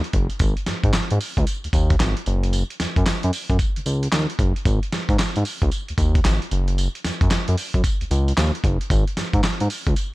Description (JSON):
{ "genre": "R&B, new jack swing", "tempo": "113 BPM", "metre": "4/4", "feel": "swing 64% on 16ths", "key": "unclear", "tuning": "A4 = 436 Hz", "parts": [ { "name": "dusty soul sampler-style drum kit", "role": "drums", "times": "0.0-10.1 s", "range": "handclaps, hi-hat, kick drum, snare drum, tambourine", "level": "-21 LUFS", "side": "equal", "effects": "none" }, { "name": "smooth gliding synth bass", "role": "bass", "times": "0.1-9.9 s", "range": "F#1 to G#2", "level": "-20 LUFS", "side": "equal", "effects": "none" } ], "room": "little or no reverb", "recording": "none", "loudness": "-19 LUFS", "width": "side -20 dB against mid", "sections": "0.0-10.1 A section", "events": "none", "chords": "none" }